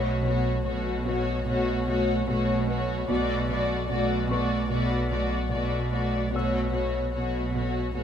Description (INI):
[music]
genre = cinematic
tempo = 74 BPM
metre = 4/4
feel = straight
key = unclear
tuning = A4 = 436 Hz
[part]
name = muted studio violin section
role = melody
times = 0.0-8.0 s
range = C#5 to D5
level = -32 LUFS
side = left 3 dB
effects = none
[part]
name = muted studio violin section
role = second line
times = 0.0-8.0 s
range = F#4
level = -32 LUFS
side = left 5 dB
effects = none
[part]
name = muted studio viola section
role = accompaniment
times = 0.0-8.0 s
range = A3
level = -32 LUFS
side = right 3 dB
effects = none
[part]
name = muted studio cello section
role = riff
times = 0.0-8.0 s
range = B2 to B3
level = -34 LUFS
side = right 1 dB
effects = none
[part]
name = muted studio cello section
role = bass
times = 0.0-8.0 s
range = B2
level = -32 LUFS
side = right 1 dB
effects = none
[part]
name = muted studio double bass section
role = bass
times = 0.0-8.0 s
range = B1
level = -34 LUFS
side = right 3 dB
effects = none
[part]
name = pure sine sub bass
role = drone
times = 0.0-8.0 s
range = B1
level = -33 LUFS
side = equal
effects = none
[part]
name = warm grand piano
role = texture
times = 3.5-8.0 s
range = B4 to E6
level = -38 LUFS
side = left 3 dB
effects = none
[sound]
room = moderate scoring stage reverb, RT60 1.7 s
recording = close, detailed microphones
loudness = -24 LUFS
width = side -8 dB against mid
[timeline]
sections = 0.0-8.0 A section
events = none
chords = 0.0 A6/B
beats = 0.66 1.47 2.28 | 3.09 3.90 4.71 5.53 | 6.34 7.15 7.96